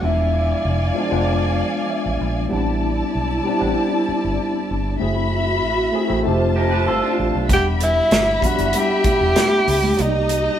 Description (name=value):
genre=lush 1970s-style soul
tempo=96 BPM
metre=4/4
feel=straight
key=unclear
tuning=A4 = 440 Hz
part: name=breathy tenor saxophone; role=melody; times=0.0-1.3, 7.5-10.6 s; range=Eb4 to G4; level=-19 LUFS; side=equal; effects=none
part: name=dark studio string section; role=second line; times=0.0-10.6 s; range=G3 to B5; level=-23 LUFS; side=equal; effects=none
part: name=tine electric piano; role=accompaniment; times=0.0-10.6 s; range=F3 to G#5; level=-23 LUFS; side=left 1 dB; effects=overdrive, medium stereo tremolo
part: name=vintage muted fingered electric bass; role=bass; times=0.0-10.5 s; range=E1 to C#2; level=-23 LUFS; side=equal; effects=none
part: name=electric guitar at the edge of break-up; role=riff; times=6.6-7.5 s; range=D4 to B4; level=-23 LUFS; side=right 4 dB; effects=spring reverb
part: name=modern studio drum kit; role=drums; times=7.5-10.4 s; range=hi-hat, kick drum, snare drum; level=-21 LUFS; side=right 1 dB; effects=none
part: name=congas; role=percussion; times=7.5-10.1 s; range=none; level=-28 LUFS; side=right 3 dB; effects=none
room=wet stone room reverb, RT60 1.1 s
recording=band playing live in one room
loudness=-17 LUFS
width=side -10 dB against mid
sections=0.0-10.6 A section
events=tine electric piano fill 1.6-2.5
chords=0.0 E7b9; 2.5 Am11; 5.0 F#m7b5; 6.3 F9; 7.5 Em7; 10.0 Cm7